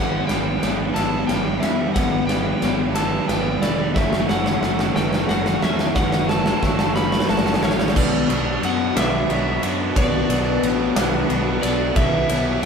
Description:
post-rock; 60 BPM (dotted quarters); 6/8; straight; A4 = 441 Hz
overdriven slide guitar; melody; 0.0-12.7 s; C#5 to B5; -26 LUFS; left 1 dB
hollow soft pad; sustained chords; 0.0-12.7 s; F#3 to F#5; -36 LUFS; right 1 dB
twangy electric guitar; arpeggios; 0.0-12.7 s; F#2 to F#4; -32 LUFS; left 1 dB
vibraphone with soft mallets; arpeggios; 0.0-12.7 s; A4 to D5; -33 LUFS; right 1 dB
overdriven semi-hollow guitar; riff; 0.0-12.7 s; B2 to E4; -26 LUFS; left 6 dB; phaser
tight distorted guitar; riff; 0.0-12.7 s; B2 to E4; -28 LUFS; right 7 dB; distortion
fuzz fingered electric bass; bass; 0.0-12.7 s; E1 to F#2; -28 LUFS; equal; overdrive
huge arena drum kit; drums; 0.3-12.7 s; crash cymbal, kick drum, ride cymbal, snare drum; -21 LUFS; right 1 dB
moderate stone room reverb, RT60 1.1 s; band playing live in one room; -18 LUFS; side -6 dB against mid
0.0-8.0 A section; 8.0-12.7 B section
build-up 0.0-8.0; drum fill 0.0-8.0
0.0 Em/G; 4.0 F#m7; 8.0 Bm; 12.0 Em/B
0.96 | 1.96 2.96 | 3.96 4.96 | 5.96 6.96 | 7.96 8.96 | 9.96 10.96 | 11.96

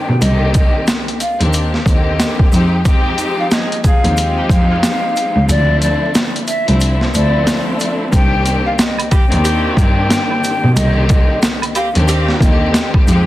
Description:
hip hop, boom-bap hip-hop; 91 BPM; 4/4; swing 61% on 16ths; C minor; A4 = 440 Hz
breathy mellow jazz flute; melody; 0.0-12.9 s; D5 to G5; -21 LUFS; left 1 dB; high-pass filter, low-pass filter, tape echo
warm studio string section; accompaniment; 0.0-13.3 s; D3 to G4; -19 LUFS; left 1 dB; cassette tape, high-pass filter, low-pass filter
warm cello; bass; 0.1-13.3 s; C2 to B2; -16 LUFS; equal
boom bap sampler-style drum kit; drums; 0.2-13.3 s; hi-hat, kick drum, snare drum; -15 LUFS; equal; overdrive, vintage 12-bit sampler grit
tube shaker and woodblock; percussion; 0.2-13.3 s; -29 LUFS; right 6 dB
warm saxophone section; stabs; 2.8-4.8, 9.1-12.5 s; C3 to Ab4; -24 LUFS; right 2 dB; high-pass filter, low-pass filter, tape echo
light reverb, small room ambience; dense, heavily limited modern master, vinyl crackle; -12 LUFS; side -15 dB against mid
0.0-8.1 A section; 8.1-13.3 B section
kick muted 5.5-8.1
0.0 Cm7; 2.5 Fm7; 5.5 Dm7; 8.1 Cm7
| 0.22 0.88 1.53 2.19 | 2.85 3.51 4.17 4.83 | 5.49 6.15 6.81 7.47 | 8.13 8.79 9.45 10.11 | 10.77 11.43 12.08 12.74

